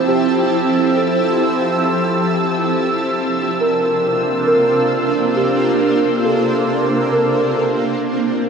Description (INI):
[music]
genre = ambient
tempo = 68 BPM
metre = 3/4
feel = straight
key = C mixolydian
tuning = A4 = 441 Hz
[part]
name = shimmering ambient pad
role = sustained chords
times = 0.0-8.5 s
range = C3 to A5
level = -16 LUFS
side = right 1 dB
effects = chorus, built-in reverb, phaser
[part]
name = muted felt-like synth keys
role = arpeggios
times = 0.0-8.5 s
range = G4 to C5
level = -19 LUFS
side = right 1 dB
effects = chorus, tape echo
[part]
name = muted studio violin section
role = texture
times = 0.0-8.0 s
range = E6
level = -25 LUFS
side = right 1 dB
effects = none
[sound]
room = wet huge ambient reverb, RT60 7.8 s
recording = worn, warbling old tape, cassette tape, warbly pitch drift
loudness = -14 LUFS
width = side -6 dB against mid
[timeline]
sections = 0.0-8.0 A section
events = none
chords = 0.0 Fmaj7; 2.7 C9sus4